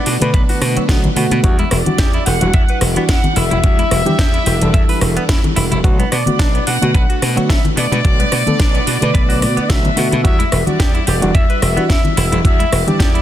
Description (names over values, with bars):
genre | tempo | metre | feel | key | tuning
nu-disco, nu disco | 109 BPM | 4/4 | swing 55% on 16ths | E minor | A4 = 441 Hz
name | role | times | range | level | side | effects
mellow trumpet section | melody | 0.0-13.2 s | D5 to F#5 | -21 LUFS | left 1 dB | tape echo
string machine, full ensemble | sustained chords | 0.0-13.2 s | G3 to F#5 | -25 LUFS | right 1 dB | ensemble chorus, sidechain pumping
direct-recorded clean electric guitar | riff | 0.0-13.2 s | B2 to E5 | -25 LUFS | right 2 dB | lush chorus, tape echo
glassy slap bass | bass | 0.1-13.2 s | E1 to B2 | -18 LUFS | equal | sidechain pumping
house drum kit | drums | 0.1-13.2 s | hi-hat, rim click, snare drum | -22 LUFS | equal | overdrive
bongos and congas | percussion | 0.1-13.0 s | none | -24 LUFS | left 4 dB | none
reed electric piano | accompaniment | 0.2-13.0 s | D3 to B4 | -21 LUFS | equal | sidechain pumping, tape echo
electronic kick drum | drums | 0.3-13.1 s | none | -14 LUFS | equal | none
room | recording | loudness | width
light reverb | dense, heavily limited modern master | -12 LUFS | side -12 dB against mid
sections
0.0-13.2 A section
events
none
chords
0.0 Bm7; 1.4 Em9; 5.8 Bm7; 10.2 Em9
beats
0.34 0.89 | 1.44 1.99 2.54 3.09 | 3.64 4.19 4.74 5.29 | 5.84 6.39 6.94 7.49 | 8.04 8.60 9.14 9.70 | 10.25 10.80 11.35 11.90 | 12.45 13.00